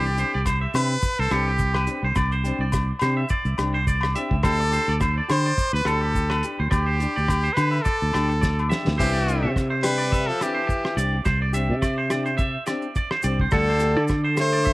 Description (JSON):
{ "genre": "highlife guitar band", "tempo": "106 BPM", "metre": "4/4", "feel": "swing 55% on 16ths", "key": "C major", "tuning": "A4 = 445 Hz", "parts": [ { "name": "brilliant trumpet", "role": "melody", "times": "0.0-14.7 s", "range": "G4 to C5", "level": "-26 LUFS", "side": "equal", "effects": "cassette tape, analog delay" }, { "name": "fingerpicked steel-string acoustic guitar", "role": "accompaniment", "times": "0.0-14.6 s", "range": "E3 to G4", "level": "-32 LUFS", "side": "left 3 dB", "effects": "cassette tape" }, { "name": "twangy electric guitar", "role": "arpeggios", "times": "0.0-14.7 s", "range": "G4 to E5", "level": "-28 LUFS", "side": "right 3 dB", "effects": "cassette tape, analog delay" }, { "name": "fingered electric bass", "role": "bass", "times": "0.0-14.7 s", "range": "C2 to D3", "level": "-24 LUFS", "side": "equal", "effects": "none" }, { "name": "maracas", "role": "percussion", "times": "0.1-14.7 s", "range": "none", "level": "-42 LUFS", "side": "left 6 dB", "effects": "none" }, { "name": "damped 70s drum kit", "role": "drums", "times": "0.2-14.7 s", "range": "crash cymbal, hi-hat, kick drum, rim click, snare drum", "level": "-26 LUFS", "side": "equal", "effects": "cassette tape" }, { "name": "agogo bells", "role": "percussion", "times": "0.5-8.7 s", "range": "none", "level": "-30 LUFS", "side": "left 3 dB", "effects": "none" }, { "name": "raspy tenor saxophone", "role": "second line", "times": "9.0-14.7 s", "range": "D3 to A3", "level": "-29 LUFS", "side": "left 2 dB", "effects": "cassette tape" } ], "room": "light reverb, studio reverb", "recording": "home recording on cassette", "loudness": "-20 LUFS", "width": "side -20 dB against mid", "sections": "0.0-9.0 A section; 9.0-14.7 B section", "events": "drum fill 8.4-9.0", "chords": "0.0 Cadd9; 4.4 Gsus2/D; 9.0 Cadd9; 13.5 Gsus2/D", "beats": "0.45 1.02 1.59 | 2.16 2.73 3.30 3.87 | 4.44 5.01 5.58 6.14 | 6.71 7.28 7.85 8.42 | 8.99 9.55 10.12 10.69 | 11.26 11.82 12.39 12.96 | 13.52 14.09 14.66" }